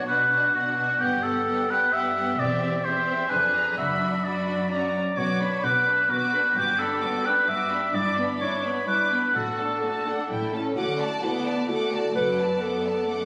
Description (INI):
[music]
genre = classical, dramatic, fast romantic movement for symphony orchestra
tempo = 130 BPM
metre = 3/4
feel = straight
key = D major from 7.9 s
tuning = A4 = 440 Hz
[part]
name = rich symphonic violin section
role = melody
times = 0.0-13.2 s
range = E5 to D6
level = -37 LUFS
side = equal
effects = none
[part]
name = warm oboe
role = second line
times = 0.0-10.3 s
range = F#4 to E5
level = -26 LUFS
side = equal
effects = none
[part]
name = warm symphonic violin section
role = second line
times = 0.0-13.2 s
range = D4 to A5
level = -36 LUFS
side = equal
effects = none
[part]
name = warm symphonic viola section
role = accompaniment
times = 0.0-13.2 s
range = F#3 to D4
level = -34 LUFS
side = equal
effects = none
[part]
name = warm symphonic cello section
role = bass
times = 0.1-13.2 s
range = D2 to B2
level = -36 LUFS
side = equal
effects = none
[part]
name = rich studio double bass section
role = bass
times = 1.0-12.5 s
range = E1 to D2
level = -39 LUFS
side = equal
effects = none
[part]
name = warm clarinet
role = second line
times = 10.5-13.1 s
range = E4 to B4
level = -29 LUFS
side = equal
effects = none
[sound]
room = wet concert hall reverb, RT60 2.3 s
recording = recorded on a phone in the room, club reverb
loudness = -24 LUFS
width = mono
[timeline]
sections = 0.0-10.8 A section; 10.8-13.2 B section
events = none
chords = 0.0 Bm; 1.0 Gmaj7; 2.4 C/E; 3.3 Fdim7; 3.8 Bm/F#; 4.7 F#; 5.2 Bm; 6.6 Gmaj7; 9.3 D/A; 10.3 A; 10.8 D; 12.2 D/F#